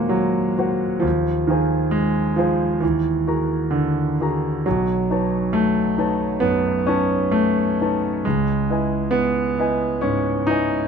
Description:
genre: classical, impressionist solo piano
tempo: 67 BPM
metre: 4/4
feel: rubato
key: unclear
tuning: A4 = 440 Hz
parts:
  - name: warm concert grand piano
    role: solo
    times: 0.0-10.9 s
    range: B1 to A#5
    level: -18 LUFS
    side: equal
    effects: none
room: light reverb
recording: close, detailed microphones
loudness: -18 LUFS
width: side -6 dB against mid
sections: 0.0-10.9 A section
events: none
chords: 0.0 D#m6; 1.0 Fm7/Eb; 2.8 A#aug7/D#; 4.6 B9; 8.2 C#m9

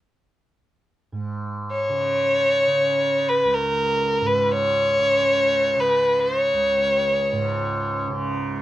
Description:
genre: indian classical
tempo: free time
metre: none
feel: none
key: unclear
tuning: A4 = 440 Hz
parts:
  - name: tanpura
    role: drone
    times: 1.1-8.6 s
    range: C#2 to C#3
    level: -27 LUFS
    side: right 3 dB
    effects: none
  - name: rich violin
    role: melody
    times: 1.7-8.0 s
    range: A#4-22c to C#5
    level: -19 LUFS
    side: left 1 dB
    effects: none
room: light reverb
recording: worn, warbling old tape, cassette tape, warbly pitch drift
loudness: -18 LUFS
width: side -14 dB against mid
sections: 1.1-8.6 A section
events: none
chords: none

